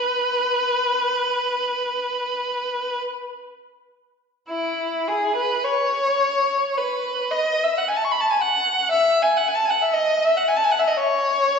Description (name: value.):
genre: classical, free, expressive piece for unaccompanied violin.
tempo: 35-60 BPM.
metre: 4/4.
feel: rubato.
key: unclear.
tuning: A4 = 441 Hz.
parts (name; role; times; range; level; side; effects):
clear violin; solo; 0.0-11.6 s; E4 to C#6; -19 LUFS; left 1 dB; none.
room: wet recital hall reverb, RT60 1.7 s.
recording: recorded in a church or concert hall, nothing above 8.0 kHz.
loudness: -19 LUFS.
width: side -6 dB against mid.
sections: 0.0-4.5 A section; 4.5-11.6 B section.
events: none.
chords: none.